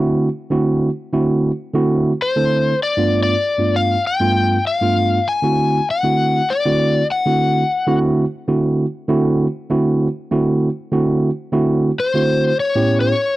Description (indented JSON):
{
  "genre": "blues",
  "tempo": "98 BPM",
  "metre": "4/4",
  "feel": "swing 53% on 16ths",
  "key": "D mixolydian",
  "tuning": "A4 = 441 Hz",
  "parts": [
    { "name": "tine electric piano", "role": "accompaniment", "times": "0.0-13.1 s", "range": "G2 to A4", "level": "-16 LUFS", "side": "right 2 dB", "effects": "none" },
    { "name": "overdriven slide guitar", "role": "melody", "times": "2.2-8.0, 12.0-13.4 s", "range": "C5 to G#5", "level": "-17 LUFS", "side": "left 3 dB", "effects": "none" }
  ],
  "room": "digital ambience",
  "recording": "dry, close 1970s-style studio recording",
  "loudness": "-15 LUFS",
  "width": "side -16 dB against mid",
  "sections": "0.0-13.4 A section",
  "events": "none",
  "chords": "0.0 D9; 2.8 G9; 5.3 D9; 12.6 A9"
}